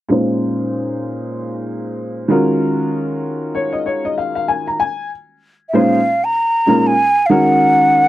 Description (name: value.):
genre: hip hop.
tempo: 96 BPM.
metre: 4/4.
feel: swing 59% on 16ths.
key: Bb minor.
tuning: A4 = 436 Hz.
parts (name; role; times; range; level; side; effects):
dark upright piano; accompaniment; 0.1-8.1 s; Bb2 to Bb5; -16 LUFS; equal; low-pass filter.
breathy mellow silver concert flute; melody; 5.7-8.1 s; E5 to Bb5; -13 LUFS; equal; none.
room: light reverb.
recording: dry, close 1970s-style studio recording.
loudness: -14 LUFS.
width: side -14 dB against mid.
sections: 0.1-5.1 A section; 5.1-8.1 B section.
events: filter sweep on upright piano 0.1-5.1; upright piano fill 3.2-5.1.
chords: 0.1 Bbm11; 2.3 Ebm11; 5.1 Bbm11; 7.3 Ebm7.